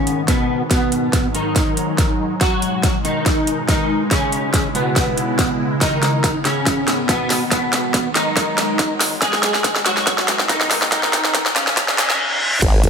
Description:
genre	heavy wobble dubstep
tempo	141 BPM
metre	4/4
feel	swing 53% on 16ths, half-time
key	G# minor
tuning	A4 = 440 Hz
part	clean electric guitar	melody	0.0-12.5 s	B2 to G#4	-20 LUFS	equal	ensemble chorus, dub echo
part	evolving wavetable pad	sustained chords	0.0-12.2 s	G#2 to E4	-25 LUFS	left 1 dB	ensemble chorus, built-in reverb, sidechain pumping
part	big-room dance drum kit	drums	0.1-12.9 s	crash cymbal, hi-hat, snare drum, toms	-19 LUFS	equal	overdrive, high-pass filter on snare, small room ambience, high-pass filter on hats, high-pass filter on toms, high-pass filter on cymbals
part	electronic kick drum	drums	0.3-12.9 s	none	-20 LUFS	equal	overdrive, small room ambience
part	riser, reverse cymbal and impact	sound effects	9.2-12.9 s	none	-24 LUFS	equal	none
part	formant-sweep wobble bass	bass	12.6-12.9 s	F#1 to G#1	-15 LUFS	equal	chorus, overdrive
room	moderate plate reverb, RT60 1.7 s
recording	high-pass filter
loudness	-15 LUFS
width	side -6 dB against mid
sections	0.0-12.6 A section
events	build-up 0.0-12.6; drum fill 0.0-12.2, 12.3-12.6; filter sweep 0.0-12.6; reverse cymbal 11.8-12.6; impact 12.6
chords	0.0 G#m; 0.7 G#m7; 2.4 B6; 4.1 C#m; 5.8 G#m; 7.5 G#m7; 9.2 B6; 10.9 C#5

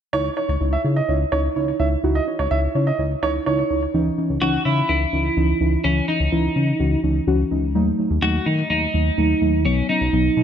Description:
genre	pop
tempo	126 BPM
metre	4/4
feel	straight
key	C# minor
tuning	A4 = 443 Hz
part	clear baby grand piano	second line	0.1-3.8 s	C#5 to E5	-25 LUFS	right 3 dB	ping-pong delay
part	muted felt-like synth keys	accompaniment	0.1-10.4 s	E3 to C#5	-22 LUFS	equal	chorus
part	chorused synth bass	bass	0.1-10.4 s	B1 to D#3	-22 LUFS	left 1 dB	none
part	twelve-string electric guitar	melody	4.4-10.4 s	C#4 to F#4	-22 LUFS	right 2 dB	lush chorus
room	light reverb, digital ambience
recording	none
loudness	-18 LUFS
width	side -8 dB against mid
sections	0.1-3.9 A section; 3.9-10.4 B section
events	none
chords	0.1 C#madd9; 7.8 D#dim; 9.7 B

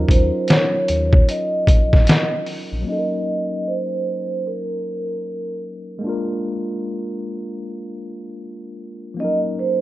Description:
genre	lo-fi hip hop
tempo	76 BPM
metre	4/4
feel	swing 63% on 16ths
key	Eb dorian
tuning	A4 = 439 Hz
part	tine electric piano	accompaniment	0.0-9.8 s	F3 to Bb4	-26 LUFS	left 1 dB	medium stereo tremolo, low-pass filter
part	sub bass with octave	bass	0.0-2.8 s	Bb1 to Eb2	-21 LUFS	equal	none
part	vibraphone with soft mallets	melody	0.1-9.8 s	Bb4 to Eb5	-22 LUFS	right 2 dB	low-pass filter
part	trip hop sampler-style drum kit	drums	0.1-2.7 s	hi-hat, kick drum, snare drum	-15 LUFS	equal	vintage 12-bit sampler grit
room	digital ambience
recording	rough home demo mix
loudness	-18 LUFS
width	side -16 dB against mid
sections	0.0-2.9 A section; 2.9-9.8 B section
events	filter sweep 2.9-9.8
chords	0.0 Ebm9; 2.9 Ebm7; 6.0 Bb7; 9.2 Ebm7

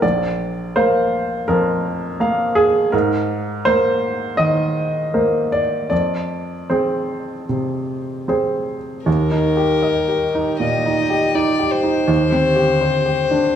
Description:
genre	neoclassical piano and strings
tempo	75-83 BPM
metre	4/4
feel	rubato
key	unclear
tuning	A4 = 441 Hz
part	bright upright piano	accompaniment	0.0-13.6 s	Bb1 to F5	-17 LUFS	right 1 dB	none
part	rich violin	melody	9.1-13.6 s	Bb4 to Eb5	-19 LUFS	left 6 dB	none
part	warm analog pad	sustained chords	9.5-13.6 s	D3 to G5	-25 LUFS	right 2 dB	chorus
room	light reverb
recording	studio reverb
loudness	-16 LUFS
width	side -9 dB against mid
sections	0.0-9.1 A section; 9.1-13.6 B section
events	none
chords	0.0 Bb; 2.9 Abadd9; 5.9 Fm; 9.1 Eb; 12.1 Cmadd9

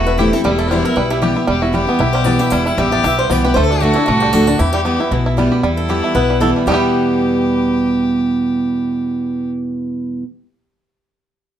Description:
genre	bluegrass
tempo	232 BPM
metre	4/4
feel	swing 55% on 8ths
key	E minor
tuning	A4 = 440 Hz
part	picked swing-style acoustic guitar	melody	0.0-10.2 s	D4 to G5	-21 LUFS	left 1 dB	none
part	clear fiddle	second line	0.0-9.5 s	B3 to A4	-22 LUFS	left 3 dB	none
part	picked steel-string acoustic guitar	accompaniment	0.0-10.2 s	E2 to F#4	-17 LUFS	equal	none
part	bluegrass banjo	arpeggios	0.0-10.2 s	E3 to G4	-20 LUFS	right 3 dB	none
part	upright bass	bass	0.0-10.2 s	E1 to E2	-21 LUFS	equal	none
room	moderate small room reverb, RT60 0.5 s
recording	none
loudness	-13 LUFS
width	side -10 dB against mid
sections	0.0-5.6 A section; 5.6-6.7 B section; 6.7-8.7 C section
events	none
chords	0.4 Em; 3.6 D; 4.6 Em

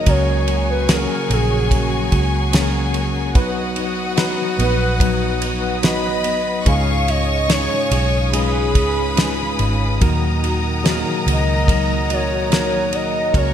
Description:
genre	pop ballad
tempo	72 BPM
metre	4/4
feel	straight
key	Eb minor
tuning	A4 = 440 Hz
part	hollow clarinet-like synth lead	melody	0.0-13.5 s	Gb4 to F5	-23 LUFS	right 1 dB	chorus
part	warm studio violin section	second line	0.0-13.5 s	F#4 to Db6	-26 LUFS	left 1 dB	none
part	tine electric piano	accompaniment	0.0-13.5 s	Ab2 to Db5	-24 LUFS	left 2 dB	medium stereo tremolo
part	dark studio string section	sustained chords	0.0-13.5 s	Bb4 to D#6	-28 LUFS	left 4 dB	none
part	nylon-string guitar	arpeggios	0.0-13.5 s	Db3 to B4	-29 LUFS	right 1 dB	ensemble chorus, ping-pong delay
part	vintage muted fingered electric bass	bass	0.0-13.5 s	Ab1 to Eb2	-21 LUFS	equal	none
part	damped 70s drum kit	drums	0.1-13.5 s	kick drum, ride cymbal, snare drum	-21 LUFS	equal	gated reverb
room	light reverb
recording	bright 1980s-style digital production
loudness	-16 LUFS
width	side -9 dB against mid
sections	0.0-13.5 A section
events	none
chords	0.1 Gb; 3.4 B; 6.7 Dbadd9; 10.0 Ebm

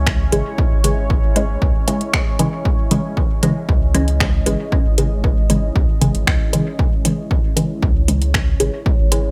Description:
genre	dub techno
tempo	116 BPM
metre	4/4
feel	straight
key	C# minor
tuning	A4 = 440 Hz
part	deep dark ambient pad	sustained chords	0.0-9.3 s	G#3 to D#5	-30 LUFS	equal	chorus, built-in reverb, sidechain pumping
part	soft dub sub bass	bass	0.0-9.3 s	G#1 to C#2	-22 LUFS	equal	sidechain pumping
part	deep house drum kit	drums	0.1-9.2 s	finger snaps, hi-hat	-24 LUFS	equal	none
part	electronic kick drum	drums	0.1-9.0 s	none	-20 LUFS	equal	none
part	filtered dub chord stab	stabs	0.3-9.2 s	C#3 to G#3	-23 LUFS	equal	phaser, sidechain pumping, dub echo
room	light reverb, digital ambience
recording	none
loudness	-17 LUFS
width	mono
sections	0.0-9.3 A section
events	filter sweep on synth stab 0.0-9.3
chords	0.0 C#m

